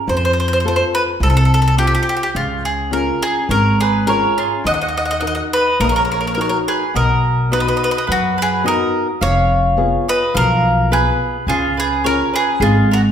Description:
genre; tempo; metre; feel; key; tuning
italian folk, Italian serenade; 106 BPM; 4/4; straight; unclear; A4 = 440 Hz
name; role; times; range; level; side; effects
bowl-back mandolin; melody; 0.1-13.0 s; F4 to Eb5; -18 LUFS; equal; none
nylon-string guitar; accompaniment; 0.1-13.1 s; B2 to Bb4; -21 LUFS; left 2 dB; none
upright bass; bass; 0.1-13.1 s; F1 to F#2; -19 LUFS; equal; none
mandolin; second line; 3.5-13.0 s; Ab4 to Gb5; -21 LUFS; right 1 dB; none
room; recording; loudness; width
wet large studio reverb, RT60 1.3 s; band playing live in one room; -14 LUFS; side -8 dB against mid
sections
0.0-13.1 A section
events
none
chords
0.1 F; 2.3 Db; 4.6 Ebm; 6.9 B; 9.2 Fdim; 11.5 Db

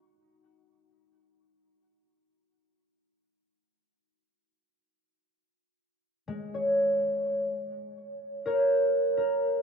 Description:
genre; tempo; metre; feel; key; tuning
ambient; free time; none; none; unclear; A4 = 441 Hz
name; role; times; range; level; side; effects
concert harp; solo; 0.0-9.6 s; G#3 to C#6; -25 LUFS; equal; ping-pong delay
room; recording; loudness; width
wet cathedral reverb, RT60 5.3 s; nothing above 7.8 kHz; -25 LUFS; side -6 dB against mid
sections
0.0-9.6 A section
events
none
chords
0.0 G#sus4

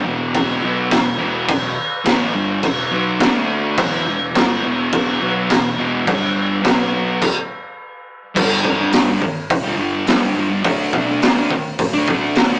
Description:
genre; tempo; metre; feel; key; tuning
garage rock duo or trio; 105 BPM; 4/4; straight; unclear; A4 = 440 Hz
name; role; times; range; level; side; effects
thick fuzz guitar; riff; 0.0-12.6 s; E2 to D4; -22 LUFS; equal; distortion
hollow-body short-scale picked electric bass; bass; 0.0-12.6 s; E1 to B2; -37 LUFS; equal; none
raw garage drum kit; drums; 0.3-12.5 s; crash cymbal, hi-hat, kick drum, snare drum; -20 LUFS; equal; none
room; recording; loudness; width
light reverb; rough rehearsal-room recording, warm saturation, small speaker sound; -18 LUFS; mono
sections
0.0-8.4 A section; 8.4-12.6 B section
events
stop 7.2-8.4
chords
0.0 E5; 3.2 D5; 3.8 E5; 6.1 G5; 6.6 B5; 7.2 N.C.; 8.4 G5; 10.7 D5

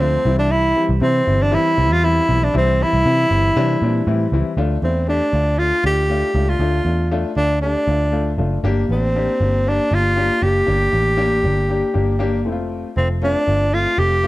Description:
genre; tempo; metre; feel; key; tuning
uptempo 1960s-style soul; 118 BPM; 4/4; straight; unclear; A4 = 439 Hz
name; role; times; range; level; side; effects
breathy tenor saxophone; melody; 0.0-14.3 s; C4 to G4; -18 LUFS; equal; none
warm baby grand piano; accompaniment; 0.0-14.3 s; E3 to G4; -24 LUFS; left 4 dB; none
vintage muted picked electric bass; bass; 0.0-14.3 s; F1 to C3; -19 LUFS; equal; none
room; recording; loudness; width
light reverb; none; -15 LUFS; side -17 dB against mid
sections
0.0-4.6 A section; 4.6-14.3 B section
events
none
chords
0.3 C; 4.6 Dm; 8.6 Gm; 12.5 F

